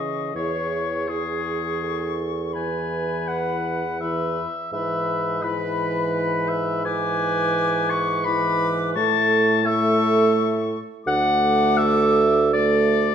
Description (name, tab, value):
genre	classical, slow romantic movement for wind quintet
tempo	84 BPM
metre	3/4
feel	rubato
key	A major from 6.9 s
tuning	A4 = 441 Hz
part	silver concert flute	melody	0.0-13.1 s	B5 to D6	-30 LUFS	left 8 dB	none
part	warm oboe	second line	0.0-13.1 s	G#4 to C#6	-23 LUFS	left 3 dB	none
part	clear clarinet	accompaniment	0.0-13.1 s	G#4 to B4	-29 LUFS	right 8 dB	none
part	mellow French horn	accompaniment	0.0-13.1 s	E3 to A3	-27 LUFS	equal	none
part	dark bassoon	bass	0.0-13.1 s	D2 to C#3	-26 LUFS	right 3 dB	none
room	wet recital hall reverb, RT60 1.3 s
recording	none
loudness	-19 LUFS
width	side -8 dB against mid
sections	0.0-13.1 A section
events	none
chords	0.4 C#m/E; 2.6 E; 4.7 E/G#; 9.0 A; 11.1 D